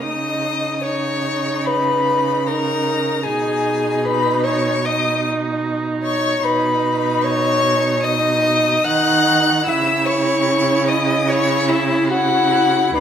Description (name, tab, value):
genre	classical, slow romantic movement for string quartet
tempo	75 BPM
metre	4/4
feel	rubato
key	G# minor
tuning	A4 = 440 Hz
part	clear violin	melody	0.0-13.0 s	E5 to F#6	-20 LUFS	left 6 dB	none
part	dark violin	second line	0.0-13.0 s	E4 to F#5	-21 LUFS	left 1 dB	none
part	rich viola	accompaniment	0.0-13.0 s	D#4 to E4	-22 LUFS	right 3 dB	none
part	warm cello	bass	0.0-13.0 s	D#2 to D#3	-23 LUFS	right 5 dB	none
room	wet recital hall reverb, RT60 1.4 s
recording	none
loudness	-15 LUFS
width	side -8 dB against mid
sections	0.0-13.0 A section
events	none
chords	0.0 D#5/C#; 3.3 G#m/B; 9.7 F#5/C#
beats	| 0.03 0.85 1.67 2.48 | 3.26 4.05 4.85 5.65 | 6.44 7.24 8.04 8.85 | 9.67 10.47 11.28 12.09 | 12.95